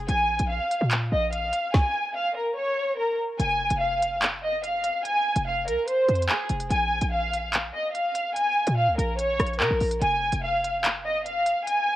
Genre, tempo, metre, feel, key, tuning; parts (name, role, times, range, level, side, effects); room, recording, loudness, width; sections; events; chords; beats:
hip hop, drill; 145 BPM; 4/4; half-time; Bb minor; A4 = 438 Hz
short 808-style bass; bass; 0.0-11.5 s; F1 to Db3; -28 LUFS; equal
rich studio violin section; melody; 0.1-12.0 s; Ab4 to Ab5; -24 LUFS; equal; low-pass filter, cassette tape
drill drum kit; drums; 0.1-11.8 s; handclaps, hi-hat, kick drum, rim click, snare drum; -26 LUFS; equal; vintage 12-bit sampler grit, cassette tape
light reverb, digital ambience; home recording on cassette, vinyl crackle; -22 LUFS; side -14 dB against mid
0.0-3.4 A section; 3.4-12.0 B section
0.1 Bb7(no3); 3.4 Fm; 6.7 Bb7(no3); 10.0 Fm
| 0.09 0.50 0.91 1.33 | 1.74 2.15 2.57 2.98 | 3.40 3.81 4.22 4.64 | 5.05 5.46 5.88 6.29 | 6.71 7.12 7.53 7.95 | 8.36 8.78 9.19 9.60 | 10.02 10.43 10.84 11.26 | 11.67